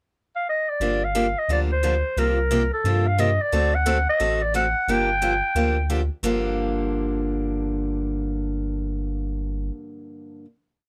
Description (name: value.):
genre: acoustic string swing (jazz manouche).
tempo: 177 BPM.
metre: 4/4.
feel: swing 60% on 8ths.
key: G minor.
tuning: A4 = 441 Hz.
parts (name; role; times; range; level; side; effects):
growling clarinet; melody; 0.4-5.9 s; A4 to G5; -25 LUFS; equal; none.
picked steel-string acoustic guitar; accompaniment; 0.8-10.5 s; G2 to A4; -28 LUFS; equal; none.
round analog bass; bass; 0.8-9.7 s; G1 to G2; -28 LUFS; equal; none.
room: little or no reverb.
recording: close, detailed microphones.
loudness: -23 LUFS.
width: mono.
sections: 0.0-0.8 pickup bar; 0.8-6.2 A section; 6.2-8.9 final chord.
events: none.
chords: 0.0 N.C.; 0.8 Gm7; 2.2 C7sus4; 3.5 D7; 4.9 Gm7.